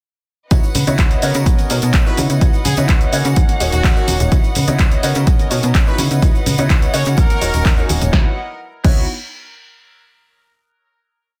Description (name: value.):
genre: filtered disco house.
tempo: 126 BPM.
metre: 4/4.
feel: straight.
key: C# dorian.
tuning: A4 = 439 Hz.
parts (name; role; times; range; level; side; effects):
bright grand piano; accompaniment; 0.5-9.0 s; A#3 to C#5; -25 LUFS; equal; phaser, sidechain pumping.
muted chamber violin section; sustained chords; 0.5-8.4 s; C#4 to F#5; -30 LUFS; equal; sidechain pumping.
slap-like FM bass; bass; 0.5-9.1 s; D#1 to C#3; -20 LUFS; equal; tube saturation, sidechain pumping.
electronic kick drum; drums; 0.5-8.9 s; none; -16 LUFS; equal; none.
punchy analog drum machine; drums; 0.5-8.9 s; cabasa, crash cymbal, handclaps, hi-hat, snare drum; -25 LUFS; equal; sidechain pumping on hats, sidechain pumping on perc, sidechain pumping on cymbals.
tambourine and congas; percussion; 0.5-8.1 s; none; -28 LUFS; equal; sidechain pumping on perc.
brilliant trumpet section; melody; 2.1-7.8 s; F#4 to C#5; -28 LUFS; equal; sidechain pumping, delay.
room: small room ambience.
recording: dense, heavily limited modern master.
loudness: -15 LUFS.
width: mono.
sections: 0.5-8.1 drop; 8.1-10.0 final chord.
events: drop 0.5-8.1.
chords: 0.5 C#m11; 1.5 Bmaj9; 2.2 C#m11; 3.4 D#m7; 4.3 C#m11; 5.3 Bmaj9; 6.0 C#m11; 7.2 D#m7; 8.1 C#m11.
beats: | 0.51 0.99 1.46 1.94 | 2.42 2.89 3.37 3.85 | 4.32 4.80 5.27 5.75 | 6.23 6.70 7.18 7.65 | 8.13 8.61.